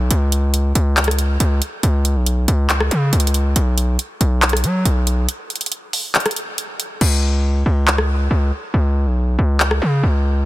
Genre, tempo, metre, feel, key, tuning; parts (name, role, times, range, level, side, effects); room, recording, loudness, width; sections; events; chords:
hip hop, trap; 139 BPM; 4/4; half-time; A4 = 441 Hz
distorted 808-style bass; bass; 0.0-10.4 s; B1 to F#3; -15 LUFS; equal; distortion
trap drum kit; drums; 0.1-9.8 s; crash cymbal, handclaps, hi-hat, rim click; -20 LUFS; equal
little or no reverb; dense, heavily limited modern master; -15 LUFS; side -16 dB against mid
0.0-7.0 A section; 7.0-10.5 B section
break 5.3-7.0; hi-hats muted 7.0-10.5